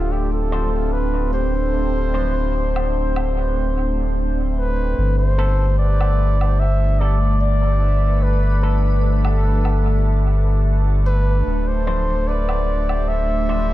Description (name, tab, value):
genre	ambient dub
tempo	74 BPM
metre	4/4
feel	straight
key	unclear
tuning	A4 = 440 Hz
part	trumpet with bucket mute	melody	0.0-13.7 s	F4 to E5	-25 LUFS	equal	diffuse ambient delay
part	soft additive organ-like pad	sustained chords	0.0-13.7 s	A3 to C5	-26 LUFS	equal	ensemble chorus, built-in reverb
part	warm sub bass	bass	0.0-13.7 s	D1 to G1	-18 LUFS	equal	tube saturation
part	electric guitar with an envelope filter	stabs	0.5-13.7 s	F3 to C5	-34 LUFS	equal	wide subtle chorus, dub echo
part	woodblock	drums	2.8-13.0 s	none	-35 LUFS	equal	dub echo
room	light reverb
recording	none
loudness	-17 LUFS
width	side -15 dB against mid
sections	0.0-13.7 A section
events	filter sweep on ambient pad 0.0-13.7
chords	0.0 D7(no3); 5.0 Gadd9; 11.5 Dm7